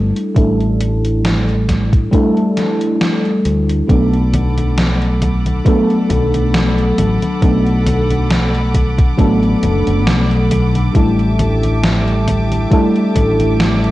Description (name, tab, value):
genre	vaporwave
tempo	68 BPM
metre	4/4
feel	swing 55% on 16ths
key	B minor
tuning	A4 = 440 Hz
part	mellow FM electric piano	accompaniment	0.0-13.9 s	F#3 to A4	-16 LUFS	equal	analog chorus, analog delay
part	fingered electric bass	bass	0.0-13.9 s	F#1 to D2	-16 LUFS	equal	none
part	gated 80s digital drum machine	drums	0.2-13.9 s	congas, hi-hat, snare drum	-20 LUFS	equal	gated reverb, gated reverb snare, overdrive, vintage 12-bit sampler grit
part	electronic kick drum	drums	0.4-13.3 s	none	-14 LUFS	equal	overdrive, vintage 12-bit sampler grit
part	bright chamber string section	sustained chords	3.9-13.9 s	G4 to D6	-25 LUFS	equal	none
room	moderate scoring stage reverb, RT60 2.0 s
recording	cassette tape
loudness	-12 LUFS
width	side -16 dB against mid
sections	0.0-3.9 A section; 3.9-13.9 B section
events	none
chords	0.0 A7sus4; 3.9 Bm7; 11.0 A7sus4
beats	| 0.36 1.25 2.13 3.01 | 3.89 4.78 5.66 6.54 | 7.42 8.30 9.19 10.07 | 10.95 11.84 12.72 13.60